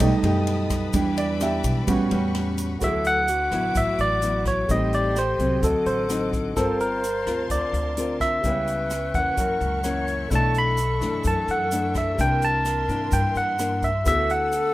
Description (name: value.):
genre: bossa nova.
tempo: 128 BPM.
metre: 4/4.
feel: straight.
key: D major.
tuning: A4 = 440 Hz.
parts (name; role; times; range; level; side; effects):
nylon-string guitar; accompaniment; 0.0-14.7 s; F#2 to Bb4; -28 LUFS; left 2 dB; none.
warm concert grand piano; accompaniment; 0.0-14.7 s; G3 to F5; -29 LUFS; right 4 dB; none.
clear studio string section; sustained chords; 0.0-14.7 s; D4 to E6; -38 LUFS; left 3 dB; none.
upright bass; bass; 0.0-14.7 s; G1 to G2; -27 LUFS; equal; none.
swinging big-band drum kit; drums; 0.0-14.6 s; hi-hat, kick drum, ride cymbal, rim click; -31 LUFS; left 1 dB; none.
tube shaker; percussion; 0.0-14.7 s; none; -40 LUFS; right 2 dB; none.
barky tine electric piano; melody; 2.8-14.7 s; A4 to B5; -24 LUFS; right 1 dB; medium stereo tremolo.
bright alto flute; second line; 2.8-14.7 s; F#4 to C#5; -30 LUFS; left 3 dB; none.
room: little or no reverb.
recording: rough home demo mix.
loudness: -20 LUFS.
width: side -16 dB against mid.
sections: 0.0-2.8 A section; 2.8-14.7 B section.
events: grand piano solo 0.0-2.8.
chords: 0.0 B7b13; 0.9 Em7; 1.9 A13; 2.8 D69; 4.7 Am7b5; 5.6 D7b9; 6.6 Gm11; 8.4 C#m7b5; 9.4 F#7; 10.3 Bm11; 12.2 C9; 14.1 D69.